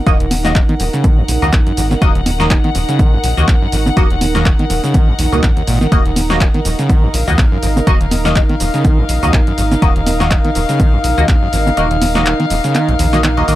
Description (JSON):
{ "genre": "acid house", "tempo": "123 BPM", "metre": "4/4", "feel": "swing 56% on 16ths", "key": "Eb minor", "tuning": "A4 = 440 Hz", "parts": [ { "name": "dark analog pad", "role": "sustained chords", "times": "0.0-13.6 s", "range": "Eb4 to Gb5", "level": "-23 LUFS", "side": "right 4 dB", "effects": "chorus, sidechain pumping" }, { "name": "warm chamber string section", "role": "texture", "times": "0.0-13.6 s", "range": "Eb4 to Gb5", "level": "-22 LUFS", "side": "left 4 dB", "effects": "sidechain pumping" }, { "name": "overdriven acid bass", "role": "riff", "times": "0.1-13.6 s", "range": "Eb1 to Eb3", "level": "-19 LUFS", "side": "equal", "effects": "distortion, tube saturation, analog chorus, tape echo" }, { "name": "band-passed chord stab", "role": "stabs", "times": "0.1-13.6 s", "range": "Bb3 to Eb5", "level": "-20 LUFS", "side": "left 1 dB", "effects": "phaser, lush chorus, tape echo" }, { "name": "round analog bass", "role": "bass", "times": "0.1-13.6 s", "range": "Eb1 to Db2", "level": "-18 LUFS", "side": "equal", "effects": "sidechain pumping" }, { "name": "electronic kick drum", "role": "drums", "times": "0.1-11.4 s", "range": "none", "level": "-13 LUFS", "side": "equal", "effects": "overdrive" }, { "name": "punchy analog drum machine", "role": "drums", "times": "0.1-13.6 s", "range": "congas, handclaps, hi-hat, shaker, snare drum", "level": "-20 LUFS", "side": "right 1 dB", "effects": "overdrive" } ], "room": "little or no reverb", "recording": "dry, gritty hardware recording", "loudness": "-11 LUFS", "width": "side -15 dB against mid", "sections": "0.0-13.6 A section", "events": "kick drops out 11.8-13.6", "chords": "0.0 Ebm", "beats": "| 0.07 0.55 1.04 1.53 | 2.02 2.50 2.99 3.48 | 3.97 4.46 4.94 5.43 | 5.92 6.41 6.89 7.38 | 7.87 8.36 8.85 9.33 | 9.82 10.31 10.80 11.29 | 11.77 12.26 12.75 13.24" }